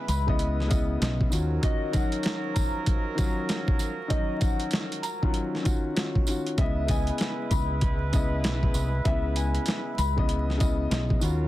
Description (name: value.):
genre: hip hop, boom-bap hip-hop.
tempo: 97 BPM.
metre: 4/4.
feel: swing 62% on 16ths.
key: C# dorian.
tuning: A4 = 437 Hz.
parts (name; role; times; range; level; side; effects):
mellow electric guitar; melody; 0.0-10.5 s; D#5 to B5; -35 LUFS; left 2 dB; analog chorus, high-pass filter, low-pass filter, ping-pong delay.
dark concert grand piano; accompaniment; 0.0-11.5 s; C#3 to E5; -31 LUFS; left 2 dB; high-pass filter, low-pass filter.
warm horn section; stabs; 0.0-11.5 s; E#3 to B4; -37 LUFS; right 4 dB; high-pass filter, low-pass filter, ping-pong delay.
deep dub fingered electric bass; bass; 0.1-1.6, 6.6-11.5 s; B1 to D#2; -27 LUFS; equal; none.
boom bap sampler-style drum kit; drums; 0.1-11.4 s; hi-hat, kick drum, snare drum; -26 LUFS; equal; overdrive.
tambourine; percussion; 0.1-11.4 s; none; -42 LUFS; right 6 dB; none.
room: digital ambience.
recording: dense, heavily limited modern master, vinyl crackle.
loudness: -24 LUFS.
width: side -15 dB against mid.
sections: 0.0-11.5 A section.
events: none.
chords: 0.0 C#m9; 1.3 D#m9; 6.6 C#m9.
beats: 0.40 1.01 | 1.63 2.25 2.87 3.49 | 4.11 4.72 5.34 5.96 | 6.58 7.20 7.82 8.44 | 9.05 9.67 10.29 10.91.